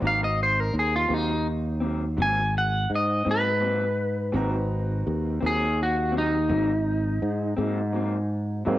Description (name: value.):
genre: blues.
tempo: 56 BPM (dotted quarters).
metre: 12/8.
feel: straight.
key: Ab mixolydian.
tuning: A4 = 441 Hz.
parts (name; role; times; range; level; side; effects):
bright upright piano; accompaniment; 0.0-8.8 s; Gb3 to Bb5; -32 LUFS; right 3 dB; cassette tape.
electric guitar through a small old amp; accompaniment; 0.0-8.8 s; Ab2 to C4; -32 LUFS; left 3 dB; harmonic tremolo, cassette tape.
sustaining fretless electric bass; bass; 0.0-8.8 s; Ab1 to Ab2; -26 LUFS; equal; analog chorus.
electric guitar at the edge of break-up; melody; 0.1-8.3 s; Eb4 to Ab5; -25 LUFS; equal; cassette tape.
room: moderate spring reverb, RT60 1.2 s.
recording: home recording on cassette.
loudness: -22 LUFS.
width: side -14 dB against mid.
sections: 0.0-8.7 A section.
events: clean electric guitar solo 0.0-8.7.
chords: 0.0 Ab9.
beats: | 0.02 1.10 2.18 3.26 | 4.34 5.42 6.50 7.58 | 8.67.